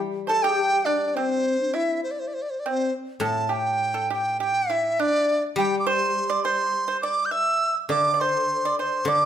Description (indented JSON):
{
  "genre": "chinese traditional, Chinese chamber ensemble",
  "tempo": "103 BPM",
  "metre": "2/4",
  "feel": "rubato",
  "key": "C gong mode",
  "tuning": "A4 = 440 Hz",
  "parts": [
    { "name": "guzheng", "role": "accompaniment", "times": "0.0-9.3 s", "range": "A2 to G3", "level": "-30 LUFS", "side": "left 4 dB", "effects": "none" },
    { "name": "dizi", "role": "melody", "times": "0.3-9.3 s", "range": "C5 to G6", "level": "-23 LUFS", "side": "right 1 dB", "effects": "none" },
    { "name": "mellow hollow low xiao", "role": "second line", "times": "0.3-2.9, 7.9-9.3 s", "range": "C4 to D5", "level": "-29 LUFS", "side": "left 5 dB", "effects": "none" },
    { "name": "pipa", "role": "second line", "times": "0.3-9.3 s", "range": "C4 to E5", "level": "-28 LUFS", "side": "right 5 dB", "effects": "none" }
  ],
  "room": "moderate recital hall reverb, RT60 1.4 s",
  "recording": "minimal, uncompressed stereo recording",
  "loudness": "-21 LUFS",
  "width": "side -10 dB against mid",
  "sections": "0.0-3.2 A section; 3.2-9.3 B section",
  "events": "none",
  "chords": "none"
}